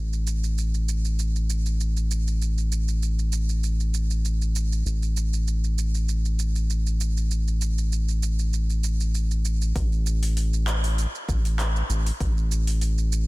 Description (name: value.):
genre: organic downtempo.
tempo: 98 BPM.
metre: 4/4.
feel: swing 53% on 16ths.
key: unclear.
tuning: A4 = 438 Hz.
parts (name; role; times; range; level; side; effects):
round analog bass; bass; 0.0-13.3 s; A1; -23 LUFS; equal; sidechain pumping.
deep house drum kit; drums; 0.1-13.3 s; handclaps, hi-hat, shaker; -34 LUFS; right 4 dB; overdrive.
electronic kick drum; drums; 9.8-12.3 s; none; -27 LUFS; equal; overdrive.
room: little or no reverb.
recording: dense, heavily limited modern master.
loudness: -22 LUFS.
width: side -22 dB against mid.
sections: 0.0-9.8 A section; 9.8-13.3 B section.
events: none.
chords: none.